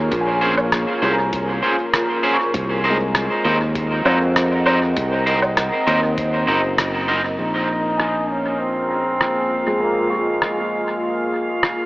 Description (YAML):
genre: ambient dub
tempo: 99 BPM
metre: 4/4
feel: straight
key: Bb minor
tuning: A4 = 441 Hz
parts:
  - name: deep dark ambient pad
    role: sustained chords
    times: 0.0-11.9 s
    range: Bb3 to Bb5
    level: -24 LUFS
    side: equal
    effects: chorus, built-in reverb
  - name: felt-muted upright piano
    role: arpeggios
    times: 0.0-11.9 s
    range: Ab3 to Db6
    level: -28 LUFS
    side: equal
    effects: low-pass filter, tape echo
  - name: fingered electric bass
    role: bass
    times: 0.0-11.9 s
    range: Gb1 to F2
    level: -23 LUFS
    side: equal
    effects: none
  - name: electronic kick drum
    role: drums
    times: 0.1-6.3 s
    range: none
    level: -34 LUFS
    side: equal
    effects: studio reverb
  - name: lo-fi sampler-style drum kit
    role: drums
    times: 0.1-11.8 s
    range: hi-hat, rim click, woodblock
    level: -24 LUFS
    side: equal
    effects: low-pass filter on hats, studio reverb, low-pass filter on snare, low-pass filter on perc, dub echo
  - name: electric guitar at the edge of break-up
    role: stabs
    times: 0.4-7.2 s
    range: Db4 to C5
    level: -21 LUFS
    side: right 1 dB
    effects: vintage 12-bit sampler grit, dub echo
  - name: clear trombone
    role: melody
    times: 7.4-11.3 s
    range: Ab3 to Eb4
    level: -23 LUFS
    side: equal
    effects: dub echo
  - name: drifting glass-harmonics texture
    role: texture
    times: 8.3-11.9 s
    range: F5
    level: -29 LUFS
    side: right 2 dB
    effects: chorus, built-in reverb
room: moderate huge ambient reverb, RT60 5.3 s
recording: AM radio sound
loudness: -17 LUFS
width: side -20 dB against mid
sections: 0.0-7.4 A section; 7.4-11.9 B section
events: band accent 6.8-7.1; filter sweep on felt piano 7.4-11.9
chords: 0.0 Bbm9; 2.5 Cm7b5; 7.4 Bbm9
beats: | 0.12 0.72 1.33 1.93 | 2.54 3.15 3.75 4.36 | 4.96 5.57 6.18 6.78 | 7.39 7.99 8.60 9.21 | 9.81 10.42 11.02 11.63